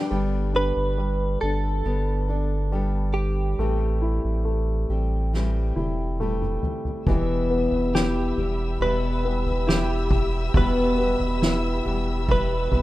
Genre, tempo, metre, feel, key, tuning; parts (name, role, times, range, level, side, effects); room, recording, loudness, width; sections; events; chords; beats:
pop ballad; 69 BPM; 4/4; straight; A4 = 440 Hz
clear baby grand piano; accompaniment; 0.0-12.8 s; B2 to E4; -29 LUFS; left 1 dB
warm studio string section; sustained chords; 0.0-0.1, 7.1-12.8 s; G4 to E6; -33 LUFS; left 2 dB
fingerpicked steel-string acoustic guitar; arpeggios; 0.0-12.8 s; E2 to A4; -30 LUFS; left 3 dB
warm sub bass; bass; 0.1-12.8 s; E1 to B1; -25 LUFS; equal
direct-recorded clean electric guitar; melody; 0.6-12.8 s; G4 to B4; -28 LUFS; right 1 dB; analog chorus
soft-mallet drum kit; drums; 5.3-12.8 s; kick drum, snare drum, toms; -25 LUFS; equal
small room ambience; rough home demo mix; -21 LUFS; side -16 dB against mid
0.1-12.8 A section
drum fill 5.3-7.1
0.1 Gadd9; 3.6 Am7; 7.1 Em
| 0.11 0.98 1.85 2.72 | 3.59 4.46 5.33 6.20 | 7.07 7.94 8.80 9.68 | 10.54 11.41 12.28